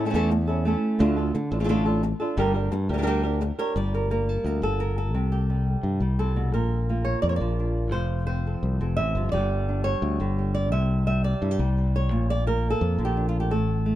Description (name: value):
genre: flamenco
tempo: 172 BPM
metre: 4/4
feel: straight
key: unclear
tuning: A4 = 435 Hz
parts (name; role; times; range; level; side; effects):
- flamenco guitar; melody; 0.0-14.0 s; A2 to E5; -26 LUFS; right 1 dB; none
- modern bright fingered electric bass; bass; 0.0-14.0 s; F1 to D3; -24 LUFS; left 1 dB; none
room: little or no reverb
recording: dark, warm production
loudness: -22 LUFS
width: side -13 dB against mid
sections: 0.0-3.8 A section; 3.8-14.0 B section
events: none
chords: 0.0 A; 1.0 Dm; 2.4 Gm; 5.1 C5; 6.5 Bb; 7.9 F; 9.3 G5; 10.7 C; 12.1 Bb